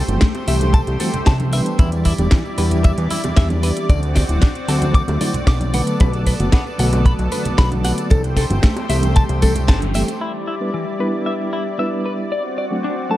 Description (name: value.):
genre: nu-disco, nu disco.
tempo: 114 BPM.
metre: 4/4.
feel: straight.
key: A dorian.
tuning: A4 = 440 Hz.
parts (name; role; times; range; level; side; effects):
lush unison pad; sustained chords; 0.0-13.2 s; G3 to D5; -26 LUFS; equal; chorus, sidechain pumping.
fat analog bass; bass; 0.0-10.0 s; D1 to E2; -19 LUFS; equal; none.
reed electric piano; accompaniment; 0.1-13.2 s; D3 to B4; -24 LUFS; equal; fast tremolo, sidechain pumping, analog delay.
house drum kit; drums; 0.1-10.2 s; hi-hat, snare drum; -26 LUFS; right 1 dB; studio reverb.
tambourine, congas and bongos; percussion; 0.1-10.2 s; none; -28 LUFS; right 1 dB; none.
direct-recorded clean electric guitar; riff; 0.2-13.2 s; E3 to D6; -26 LUFS; left 3 dB; analog chorus, low-pass filter, analog delay.
kick drum; drums; 0.2-9.8 s; none; -14 LUFS; equal; studio reverb.
room: light reverb, small room reverb.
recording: dark, warm production.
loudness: -15 LUFS.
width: side -15 dB against mid.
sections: 0.0-10.2 A section; 10.2-13.2 B section.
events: band accent 9.7.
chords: 0.0 Am7; 1.8 Em7; 3.9 D7; 5.7 Bm7; 8.1 Am7; 10.2 Em7; 12.3 D7.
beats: 0.21 0.74 1.27 | 1.79 2.32 2.85 3.37 | 3.90 4.42 4.95 5.48 | 6.00 6.53 7.06 7.58 | 8.11 8.63 9.16 9.69 | 10.21 10.74 11.27 11.79 | 12.32 12.85.